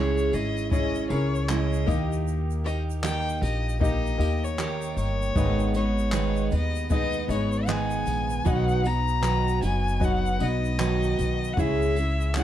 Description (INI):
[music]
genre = acoustic pop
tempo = 77 BPM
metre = 4/4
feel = swing 60% on 16ths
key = G# minor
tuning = A4 = 440 Hz
[part]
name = warm violin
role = melody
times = 0.0-12.4 s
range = C#5 to A#5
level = -31 LUFS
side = left 4 dB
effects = none
[part]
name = bright upright piano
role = accompaniment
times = 0.0-12.4 s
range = A#3 to E5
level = -34 LUFS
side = left 6 dB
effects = none
[part]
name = picked steel-string acoustic guitar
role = accompaniment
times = 0.0-12.4 s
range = G#2 to B4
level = -28 LUFS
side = right 5 dB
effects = none
[part]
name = upright bass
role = bass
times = 0.0-12.4 s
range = F#1 to D#2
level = -27 LUFS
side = equal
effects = none
[part]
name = egg shaker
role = percussion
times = 0.2-12.4 s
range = none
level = -49 LUFS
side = right 6 dB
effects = none
[part]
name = jazz brush drum kit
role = drums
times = 0.3-12.4 s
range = handclaps, kick drum, tambourine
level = -29 LUFS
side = left 1 dB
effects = none
[sound]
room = light reverb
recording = dark, warm production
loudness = -23 LUFS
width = side -11 dB against mid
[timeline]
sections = 0.0-12.4 A section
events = none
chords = 0.0 C#m; 1.9 D#; 5.4 G#m; 8.5 B; 11.6 C#m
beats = 0.71 1.49 | 2.26 3.04 3.81 4.58 | 5.36 6.14 6.91 7.69 | 8.47 9.24 10.02 10.80 | 11.58 12.36